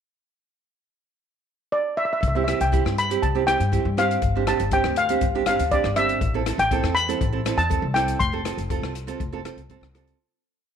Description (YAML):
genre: calypso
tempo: 120 BPM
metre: 4/4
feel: straight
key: C major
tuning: A4 = 442 Hz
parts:
  - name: steel pan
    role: melody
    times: 1.7-9.9 s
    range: D5 to C6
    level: -23 LUFS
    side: left 1 dB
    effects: none
  - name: upright bass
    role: bass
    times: 2.2-10.1 s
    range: F1 to G2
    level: -27 LUFS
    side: left 1 dB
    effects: none
  - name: swinging big-band drum kit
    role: drums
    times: 2.2-10.2 s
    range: hi-hat, kick drum, rim click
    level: -28 LUFS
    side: left 4 dB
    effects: none
  - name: nylon-string guitar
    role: accompaniment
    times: 2.4-10.2 s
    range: C4 to A4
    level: -26 LUFS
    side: right 9 dB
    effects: none
room: light reverb, small room ambience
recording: 1960s-style stereo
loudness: -20 LUFS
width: side -8 dB against mid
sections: 0.2-2.2 pickup bar; 2.2-10.2 verse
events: fade-out 8.2-10.2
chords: 0.2 N.C.; 2.2 C; 4.2 G7sus4; 6.2 Am; 8.2 F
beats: | 0.23 0.73 1.23 1.73 | 2.23 2.72 3.22 3.72 | 4.22 4.71 5.21 5.71 | 6.21 6.71 7.20 7.70 | 8.20 8.70 9.20 9.70